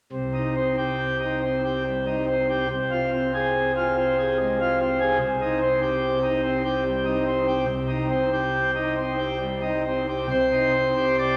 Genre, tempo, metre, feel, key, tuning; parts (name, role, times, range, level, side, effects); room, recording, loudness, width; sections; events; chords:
classical, chorale-style piece for pipe organ; 65-74 BPM; 3/4; rubato; C minor; A4 = 440 Hz
pipe organ, principal chorus; solo; 0.1-11.4 s; C2 to D5; -24 LUFS; equal
wet church reverb, RT60 2.6 s; -24 LUFS; mono
0.1-10.3 A section; 10.3-11.4 B section
0.1 Cm; 2.7 Fm/C; 5.2 Cm